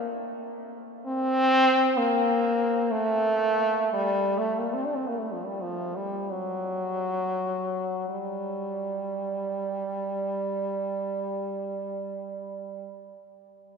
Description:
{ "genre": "classical, free, expressive piece for unaccompanied French horn", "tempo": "26-67 BPM", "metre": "3/4", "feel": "rubato", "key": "G minor", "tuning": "A4 = 440 Hz", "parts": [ { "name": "clear French horn", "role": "solo", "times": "0.0-12.9 s", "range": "F3 to D4", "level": "-25 LUFS", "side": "equal", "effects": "none" } ], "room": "wet cathedral reverb, RT60 5.5 s", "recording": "recorded in a church or concert hall", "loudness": "-25 LUFS", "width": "side -5 dB against mid", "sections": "0.0-8.1 A section; 8.1-12.2 B section", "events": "slowing down 0.0-8.1", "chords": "none" }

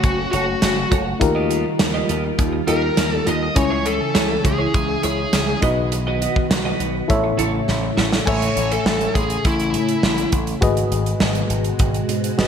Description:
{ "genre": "1980s-style pop", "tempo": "102 BPM", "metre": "4/4", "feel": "straight", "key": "unclear", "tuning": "A4 = 440 Hz", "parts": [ { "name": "bluesy overdriven lead guitar", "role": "melody", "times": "0.0-10.3 s", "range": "E4 to D#5", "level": "-23 LUFS", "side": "left 2 dB", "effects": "distortion, ping-pong delay" }, { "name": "FM electric piano with auto-pan", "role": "accompaniment", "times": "0.0-12.5 s", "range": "G#2 to G#5", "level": "-24 LUFS", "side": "left 3 dB", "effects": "none" }, { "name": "soft string machine", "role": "sustained chords", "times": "0.0-12.5 s", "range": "B2 to G#5", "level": "-26 LUFS", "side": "right 1 dB", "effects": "ensemble chorus" }, { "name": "twelve-string electric guitar", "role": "riff", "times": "0.0-8.2 s", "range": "E4 to D#5", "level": "-26 LUFS", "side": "right 4 dB", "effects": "wide subtle chorus, ping-pong delay" }, { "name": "slap bass with an envelope filter", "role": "bass", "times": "0.0-12.5 s", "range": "F#1 to A2", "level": "-25 LUFS", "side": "equal", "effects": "none" }, { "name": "modern studio drum kit", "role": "drums", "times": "0.0-12.5 s", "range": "crash cymbal, hi-hat, kick drum, snare drum", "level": "-21 LUFS", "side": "right 1 dB", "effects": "gated reverb" } ], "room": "moderate lush hall reverb, RT60 1.8 s, small room reverb", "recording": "bright 1980s-style digital production", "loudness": "-17 LUFS", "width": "side -7 dB against mid", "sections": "0.0-8.3 A section; 8.3-12.5 B section", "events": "drum fill 7.7-8.3", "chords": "0.0 F#m; 1.2 D#add9; 3.6 C#m; 5.6 B; 7.1 A; 8.3 Amaj7; 10.6 G#m7" }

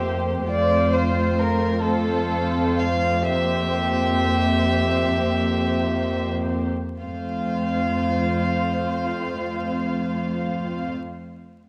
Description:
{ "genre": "classical, slow romantic movement for string orchestra", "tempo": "28-46 BPM (dotted quarters)", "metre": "6/8", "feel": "rubato", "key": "F major", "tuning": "A4 = 436 Hz", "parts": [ { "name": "dark chamber violin section", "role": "melody", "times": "0.0-10.9 s", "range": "A4 to F5", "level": "-28 LUFS", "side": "equal", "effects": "none" }, { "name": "dark studio violin section", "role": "second line", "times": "0.0-10.9 s", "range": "F4 to C5", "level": "-30 LUFS", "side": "equal", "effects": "none" }, { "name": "dark symphonic viola section", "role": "accompaniment", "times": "0.0-10.9 s", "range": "A3 to C4", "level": "-28 LUFS", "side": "equal", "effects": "none" }, { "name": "warm symphonic cello section", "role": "bass", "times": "0.0-10.9 s", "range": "F2", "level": "-28 LUFS", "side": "equal", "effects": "none" } ], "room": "moderate scoring stage reverb, RT60 2.0 s", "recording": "close, detailed microphones, vinyl crackle", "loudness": "-23 LUFS", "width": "mono", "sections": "0.0-7.0 A section; 7.0-11.2 B section", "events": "slowing down 0.0-7.0", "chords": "0.5 F; 3.3 C7/F; 7.0 F" }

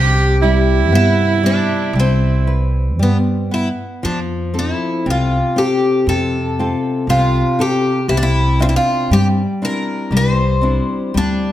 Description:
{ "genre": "fado-style ballad", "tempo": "59 BPM", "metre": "2/4", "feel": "rubato", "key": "C major, F major from 4.0 s", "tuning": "A4 = 440 Hz", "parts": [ { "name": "picked twelve-string acoustic guitar", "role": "melody", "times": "0.0-11.5 s", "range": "B3 to C5", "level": "-19 LUFS", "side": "left 2 dB", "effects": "none" }, { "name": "clear cello", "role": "second line", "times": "0.0-2.4 s", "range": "E4 to G4", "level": "-18 LUFS", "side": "right 7 dB", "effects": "none" }, { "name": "nylon-string guitar", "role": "accompaniment", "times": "0.0-11.5 s", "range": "C3 to E5", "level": "-19 LUFS", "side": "left 2 dB", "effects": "none" }, { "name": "upright bass", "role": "bass", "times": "0.0-11.5 s", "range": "C2 to G2", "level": "-17 LUFS", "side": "right 1 dB", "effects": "none" } ], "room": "light reverb", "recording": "none", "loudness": "-14 LUFS", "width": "side -13 dB against mid", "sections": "0.0-4.0 A section; 4.0-11.5 B section", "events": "none", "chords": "0.0 Cmaj7; 4.0 F; 8.1 Cadd9" }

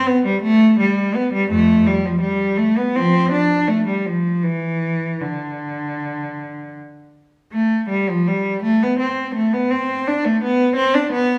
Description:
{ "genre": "classical, baroque-style suite movement for unaccompanied cello", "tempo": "76-86 BPM", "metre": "4/4", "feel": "rubato", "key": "C major", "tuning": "A4 = 440 Hz", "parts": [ { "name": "clear cello", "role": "solo", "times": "0.0-11.4 s", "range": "F2 to D4", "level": "-19 LUFS", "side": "equal", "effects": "none" } ], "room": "moderate recital hall reverb, RT60 1.4 s", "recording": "recorded in a church or concert hall", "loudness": "-18 LUFS", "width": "mono", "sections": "0.0-7.5 A section; 7.5-11.4 B section", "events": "none", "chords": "none" }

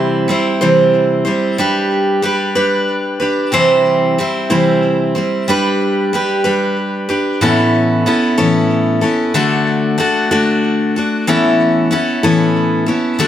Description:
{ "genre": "rock", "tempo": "62 BPM (dotted quarters)", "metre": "6/8", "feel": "straight", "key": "unclear", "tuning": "A4 = 440 Hz", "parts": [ { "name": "picked steel-string acoustic guitar", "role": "solo", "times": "0.0-13.3 s", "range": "A2 to C5", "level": "-12 LUFS", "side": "equal", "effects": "digital delay" } ], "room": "light reverb", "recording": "none", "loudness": "-12 LUFS", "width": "side -10 dB against mid", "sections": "0.0-7.4 A section; 7.4-13.3 B section", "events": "none", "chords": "0.0 C; 1.6 G; 3.5 C; 5.5 G; 7.4 Aadd9; 9.3 D; 11.3 Aadd9" }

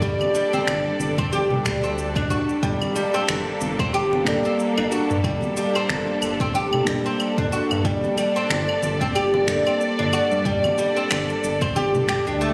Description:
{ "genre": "organic downtempo", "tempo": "92 BPM", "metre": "4/4", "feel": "swing 57% on 16ths", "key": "G minor", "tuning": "A4 = 443 Hz", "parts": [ { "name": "muted felt-like synth keys", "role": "accompaniment", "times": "0.0-12.1 s", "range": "G3 to D5", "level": "-30 LUFS", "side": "equal", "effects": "chorus, sidechain pumping, digital delay" }, { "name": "rich studio string section", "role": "sustained chords", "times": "0.0-12.5 s", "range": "G3 to D5", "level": "-30 LUFS", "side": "equal", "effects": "sidechain pumping" }, { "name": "oud", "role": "arpeggios", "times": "0.0-12.5 s", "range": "G3 to G4", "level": "-26 LUFS", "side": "equal", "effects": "digital delay" }, { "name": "smooth synth bass", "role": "bass", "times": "0.0-12.5 s", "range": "G1 to G2", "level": "-32 LUFS", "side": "equal", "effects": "sidechain pumping" }, { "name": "electronic kick drum", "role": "drums", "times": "0.0-12.2 s", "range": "none", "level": "-29 LUFS", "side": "equal", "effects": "none" }, { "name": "electronic shaker, claves and finger snaps", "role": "drums", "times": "0.0-12.5 s", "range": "none", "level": "-31 LUFS", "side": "equal", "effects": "none" }, { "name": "congas", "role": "percussion", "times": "0.2-12.2 s", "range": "none", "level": "-34 LUFS", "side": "equal", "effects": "none" } ], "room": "moderate lush hall reverb, RT60 2.5 s", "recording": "recorded on a phone in the room, studio reverb", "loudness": "-22 LUFS", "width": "mono", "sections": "0.0-12.5 A section", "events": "none", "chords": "0.0 Gmadd9" }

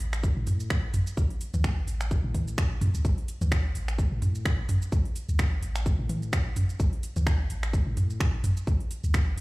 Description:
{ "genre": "minimal techno", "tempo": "128 BPM", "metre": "4/4", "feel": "swing 56% on 16ths", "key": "unclear", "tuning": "A4 = 441 Hz", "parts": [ { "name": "punchy sub bass", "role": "bass", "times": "0.0-9.4 s", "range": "A1 to A2", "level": "-29 LUFS", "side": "equal", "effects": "tube saturation, sidechain pumping" }, { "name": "house drum kit", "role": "drums", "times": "0.0-9.4 s", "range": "finger snaps, hi-hat, shaker", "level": "-36 LUFS", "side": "right 1 dB", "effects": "none" }, { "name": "electronic kick drum", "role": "drums", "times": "0.2-9.2 s", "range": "none", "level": "-26 LUFS", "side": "equal", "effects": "none" }, { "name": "electronic toms", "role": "percussion", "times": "0.5-8.5 s", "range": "none", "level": "-29 LUFS", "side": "right 1 dB", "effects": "none" } ], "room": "little or no reverb", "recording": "played on a big sound system in a bare room, large studio reverb", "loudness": "-25 LUFS", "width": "side -22 dB against mid", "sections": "0.0-9.4 A section", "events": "none", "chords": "none" }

